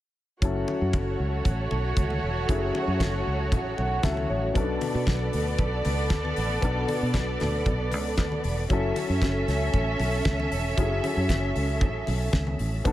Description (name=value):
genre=disco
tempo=116 BPM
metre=4/4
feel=straight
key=F# minor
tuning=A4 = 442 Hz
part: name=dark studio violin section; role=second line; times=0.4-12.8 s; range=A3 to E5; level=-29 LUFS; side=right 2 dB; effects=none
part: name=warm grand piano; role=accompaniment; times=0.4-12.9 s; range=B2 to F#5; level=-31 LUFS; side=left 4 dB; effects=none
part: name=fingered electric bass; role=bass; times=0.4-12.9 s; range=E1 to B2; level=-28 LUFS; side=equal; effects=none
part: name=damped 70s drum kit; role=drums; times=0.4-12.9 s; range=hi-hat, kick drum, snare drum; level=-28 LUFS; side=equal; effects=none
part: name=congas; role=percussion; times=0.4-12.9 s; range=none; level=-37 LUFS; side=left 2 dB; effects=none
room=light reverb, studio ambience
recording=none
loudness=-24 LUFS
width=side -14 dB against mid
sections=0.4-12.9 A section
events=grand piano fill 3.5-4.6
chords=0.4 F#m7; 4.6 Bm7; 8.7 F#m7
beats=| 0.42 0.94 1.45 1.97 | 2.49 3.00 3.52 4.04 | 4.56 5.07 5.59 6.11 | 6.63 7.14 7.66 8.18 | 8.70 9.22 9.74 10.26 | 10.78 11.30 11.82 12.34 | 12.86